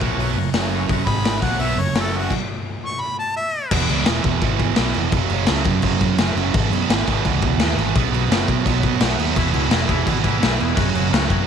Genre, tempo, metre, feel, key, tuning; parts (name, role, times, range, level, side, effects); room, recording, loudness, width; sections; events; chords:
garage rock duo or trio; 170 BPM; 4/4; straight; A4 = 440 Hz
combo organ; sustained chords; 0.0-2.3, 9.4-11.4 s; C#4 to D#5; -29 LUFS; left 14 dB
fuzz guitar; riff; 0.0-11.5 s; E2 to B3; -22 LUFS; right 13 dB; distortion
fingered electric bass; bass; 0.0-11.4 s; E1 to B2; -23 LUFS; left 2 dB
raw garage drum kit; drums; 0.0-11.4 s; crash cymbal, hi-hat, kick drum, snare drum; -21 LUFS; left 2 dB
clear harmonica; melody; 1.1-3.7 s; F#4 to C#6; -24 LUFS; left 1 dB; overdrive, tape echo
small room ambience; 1960s-style stereo with parts hard left and right; -17 LUFS; side -7 dB against mid
0.0-3.7 A section; 3.7-11.5 B section
stop 2.3-3.7
0.0 F#; 1.1 G#5; 1.4 F#; 2.5 N.C.; 3.7 E; 5.1 F#5; 6.5 E/G#; 8.0 B5; 9.4 E; 10.8 F#